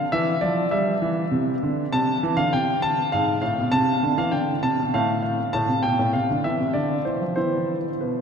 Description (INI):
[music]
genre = classical-period piano sonatina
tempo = 100 BPM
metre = 3/4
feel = straight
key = A minor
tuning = A4 = 442 Hz
[part]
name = warm concert grand piano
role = solo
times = 0.0-8.2 s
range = G#2 to A5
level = -20 LUFS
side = equal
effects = none
[sound]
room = wet cathedral reverb, RT60 4.6 s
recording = none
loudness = -20 LUFS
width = side -6 dB against mid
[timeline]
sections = 0.0-8.2 A section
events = none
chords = 0.1 C/E; 1.9 Csus2; 3.1 G#m6; 3.7 Am11; 4.9 N.C.; 5.5 Am; 6.8 Dm9; 7.4 E5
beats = | 0.12 0.71 1.32 | 1.92 2.52 3.12 | 3.72 4.32 4.92 | 5.53 6.14 6.75 | 7.38 8.02